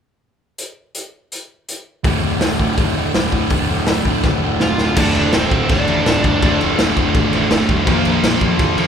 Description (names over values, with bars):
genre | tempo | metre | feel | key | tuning
punk rock | 165 BPM | 4/4 | straight | D minor | A4 = 440 Hz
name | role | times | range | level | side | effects
raw garage drum kit | drums | 0.6-8.9 s | crash cymbal, hi-hat, kick drum, snare drum | -18 LUFS | equal | none
overdriven semi-hollow guitar | riff | 2.0-8.9 s | D2 to Bb3 | -21 LUFS | left 6 dB | none
sludgy distorted guitar | riff | 2.0-8.9 s | D2 to Bb4 | -22 LUFS | right 9 dB | overdrive
fuzz picked electric bass | bass | 2.0-8.9 s | D1 to F2 | -23 LUFS | equal | overdrive
smooth overdriven lead guitar | melody | 4.6-6.6 s | C4 to F5 | -20 LUFS | equal | none
scooped high-gain guitar | riff | 5.0-8.9 s | D2 to Bb3 | -22 LUFS | equal | distortion
room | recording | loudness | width
light reverb | band playing live in one room | -14 LUFS | side -7 dB against mid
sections
0.6-2.1 A section; 2.1-5.0 B section; 5.0-8.9 C section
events
drum fill 4.2-5.0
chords
0.6 N.C.; 2.1 Dm; 7.9 Bb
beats
| 0.59 0.96 1.32 1.69 | 2.05 2.42 2.78 3.15 | 3.51 3.88 4.24 4.61 | 4.97 5.33 5.70 6.06 | 6.42 6.79 7.15 7.51 | 7.87 8.23 8.60